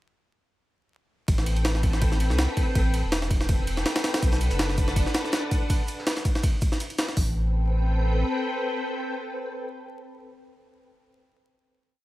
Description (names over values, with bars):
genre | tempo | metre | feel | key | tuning
drum and bass, jungle | 163 BPM | 4/4 | swing 55% on 16ths | A dorian | A4 = 440 Hz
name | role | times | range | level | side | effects
soft string machine | sustained chords | 1.3-10.9 s | C4 to G5 | -31 LUFS | left 1 dB | ensemble chorus
saturated sub bass | bass | 1.3-8.2 s | E1 to C2 | -24 LUFS | equal | tube saturation
jungle sampler-style drum kit | drums | 1.3-7.3 s | hi-hat, kick drum, ride cymbal, snare drum | -24 LUFS | equal | none
crunchy breakbeat drum kit | drums | 4.2-7.1 s | hi-hat, shaker, snare drum | -39 LUFS | right 1 dB | none
room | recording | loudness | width
small room ambience | vinyl crackle | -23 LUFS | side -16 dB against mid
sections
1.3-7.2 drop; 7.2-10.1 final chord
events
drop 1.3-7.2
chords
1.3 Am9; 4.2 Bm7; 7.2 Am9